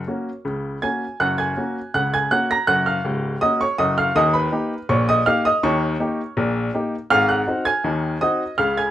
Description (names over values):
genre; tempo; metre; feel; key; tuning
ragtime piano; 81 BPM; 2/4; straight; F# major; A4 = 440 Hz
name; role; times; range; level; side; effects
clear upright piano; solo; 0.0-8.9 s; C#1 to A#6; -18 LUFS; equal; none
room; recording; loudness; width
moderate small room ambience, RT60 0.5 s; rough home demo mix; -18 LUFS; side -12 dB against mid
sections
0.0-1.2 A section; 1.2-8.9 A section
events
none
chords
0.0 F#; 4.2 D#7; 7.1 G#7